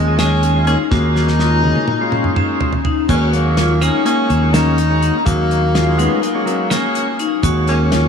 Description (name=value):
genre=progressive instrumental, band music in an uneven meter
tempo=249 BPM (eighths)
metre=9/8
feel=straight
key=Eb minor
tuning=A4 = 440 Hz
part: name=mellow tenor saxophone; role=melody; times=0.0-8.1 s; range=Ab3 to Eb4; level=-20 LUFS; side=left 1 dB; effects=diffuse ambient delay
part: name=electric guitar at the edge of break-up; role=second line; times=0.0-8.1 s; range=F3 to Bb3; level=-23 LUFS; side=right 2 dB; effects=none
part: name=vibraphone with hard mallets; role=arpeggios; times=0.0-8.1 s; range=Db4 to Gb4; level=-21 LUFS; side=left 6 dB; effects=diffuse ambient delay
part: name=fingered electric bass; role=bass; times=0.0-8.1 s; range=Eb2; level=-16 LUFS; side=equal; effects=none
part: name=overdriven tonewheel organ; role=accompaniment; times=0.1-8.1 s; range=Ab3 to Ab4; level=-23 LUFS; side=equal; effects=slow rotary speaker
part: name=damped 70s drum kit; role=drums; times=0.2-8.0 s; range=crash cymbal, hi-hat, kick drum, snare drum, toms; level=-22 LUFS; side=equal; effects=none
part: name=tube shaker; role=percussion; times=3.1-7.7 s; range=none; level=-38 LUFS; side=left 6 dB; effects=none
room=moderate huge ambient reverb, RT60 4.8 s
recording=dreamy mix soaked in reverb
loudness=-13 LUFS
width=side -6 dB against mid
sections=0.0-3.1 A section; 3.1-8.1 A section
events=drum fill 0.9-3.1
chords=0.0 Db/Eb; 0.9 Ebm7